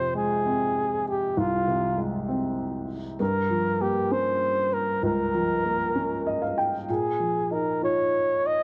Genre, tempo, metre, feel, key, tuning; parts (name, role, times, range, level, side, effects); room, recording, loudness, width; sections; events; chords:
pop; 65 BPM (dotted quarters); 6/8; straight; F minor; A4 = 440 Hz
breathy flugelhorn; melody; 0.0-8.6 s; F4 to Eb5; -27 LUFS; equal
warm upright piano; accompaniment; 0.0-8.6 s; C2 to G5; -30 LUFS; equal
light reverb; -26 LUFS; mono
0.0-8.6 A section
upright piano fill 6.0-6.9
0.0 Fm; 3.2 Gm7b5; 6.9 Bb7sus4